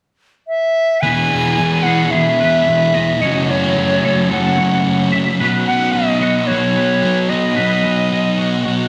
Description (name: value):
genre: rock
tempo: 110 BPM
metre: 4/4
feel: straight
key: E major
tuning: A4 = 439 Hz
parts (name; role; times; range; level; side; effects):
- bright reedy silver concert flute; melody; 0.5-8.9 s; C#5 to G#5; -20 LUFS; equal; slapback echo
- twangy electric guitar; arpeggios; 1.0-8.9 s; F#4 to E5; -26 LUFS; equal; ensemble chorus, slapback echo
- overdriven electric guitar; riff; 1.0-8.9 s; E2 to G#4; -22 LUFS; equal; reverse reverb
- thick fuzz guitar; riff; 1.0-8.9 s; E2 to B3; -20 LUFS; equal; distortion, analog chorus
room: moderate scoring stage reverb, RT60 1.9 s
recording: none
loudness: -15 LUFS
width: mono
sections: 0.0-1.0 A section; 1.0-8.9 B section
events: none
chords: 0.0 N.C.; 1.0 E; 3.2 F#m; 5.4 B